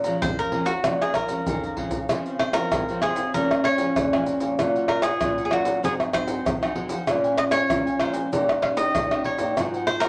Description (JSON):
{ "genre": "samba and choro", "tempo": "96 BPM", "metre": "4/4", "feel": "straight", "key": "Db major", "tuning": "A4 = 435 Hz", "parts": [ { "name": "cavaquinho", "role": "accompaniment", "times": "0.0-10.1 s", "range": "Eb4 to Bb5", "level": "-37 LUFS", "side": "equal", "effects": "none" }, { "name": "nylon-string guitar", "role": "accompaniment", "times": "0.0-10.1 s", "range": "F2 to F4", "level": "-35 LUFS", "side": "equal", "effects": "none" }, { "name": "nylon-string guitar", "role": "bass", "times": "0.0-10.1 s", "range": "Ab2 to F3", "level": "-31 LUFS", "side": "equal", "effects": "none" }, { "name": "egg shaker, pandeiro, surdo and tamborim", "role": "percussion", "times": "0.0-10.1 s", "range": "none", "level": "-28 LUFS", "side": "equal", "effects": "none" }, { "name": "cavaquinho", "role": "melody", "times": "0.2-10.1 s", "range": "Gb4 to F5", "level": "-28 LUFS", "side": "equal", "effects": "none" }, { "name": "breathy trombone", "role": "second line", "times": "2.1-10.1 s", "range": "C4 to F4", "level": "-32 LUFS", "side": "equal", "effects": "none" } ], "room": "wet studio reverb, RT60 0.5 s", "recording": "none", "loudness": "-24 LUFS", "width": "mono", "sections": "0.0-2.1 A section; 2.1-10.1 B section", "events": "drum fill 0.8-2.1", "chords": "0.0 Bbm7; 2.1 Dbmaj7; 3.3 Bbm7; 4.6 Gbmaj7/Bb; 5.8 Ab7; 7.1 Bbm7; 8.3 Eb7/Bb; 9.6 Ab7" }